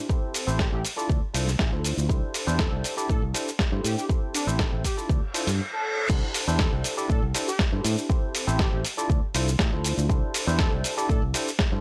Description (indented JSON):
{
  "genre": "filtered disco house",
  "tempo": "120 BPM",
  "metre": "4/4",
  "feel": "straight",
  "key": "C major",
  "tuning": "A4 = 437 Hz",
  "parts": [
    { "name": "bright tine electric piano", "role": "accompaniment", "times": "0.0-11.8 s", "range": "C4 to D5", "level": "-34 LUFS", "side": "equal", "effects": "phaser, vintage 12-bit sampler grit, sidechain pumping, low-pass filter" },
    { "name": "dusty soul sampler-style drum kit", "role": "drums", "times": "0.1-11.7 s", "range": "crash cymbal, hi-hat, shaker, snare drum", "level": "-31 LUFS", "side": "equal", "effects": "sidechain pumping on hats, sidechain pumping on perc, sidechain pumping on cymbals" },
    { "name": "electronic kick drum", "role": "drums", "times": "0.1-11.7 s", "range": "none", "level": "-27 LUFS", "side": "equal", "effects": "none" },
    { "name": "fingered electric bass", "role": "bass", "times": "0.5-11.8 s", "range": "A1 to A2", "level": "-30 LUFS", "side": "equal", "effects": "sidechain pumping, low-pass filter" },
    { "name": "analog synth brass", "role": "melody", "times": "0.6-11.2 s", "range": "D4 to A4", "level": "-37 LUFS", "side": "equal", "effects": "chorus, sidechain pumping, low-pass filter, tape echo" },
    { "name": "reverse cymbal", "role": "sound effects", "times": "5.3-6.1 s", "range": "none", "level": "-32 LUFS", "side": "equal", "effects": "none" }
  ],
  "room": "digital ambience",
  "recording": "dry, gritty hardware recording, cassette tape",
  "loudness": "-25 LUFS",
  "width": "mono",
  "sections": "0.0-6.1 A section; 6.1-11.8 B section",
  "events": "reverse cymbal 5.3-6.1; drop 6.1-11.8",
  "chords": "0.1 Am7; 0.8 Dm9; 2.1 C69; 4.1 Am7; 4.8 Dm9; 5.6 N.C.; 6.1 C69; 8.1 Am7; 8.8 Dm9; 10.1 C69"
}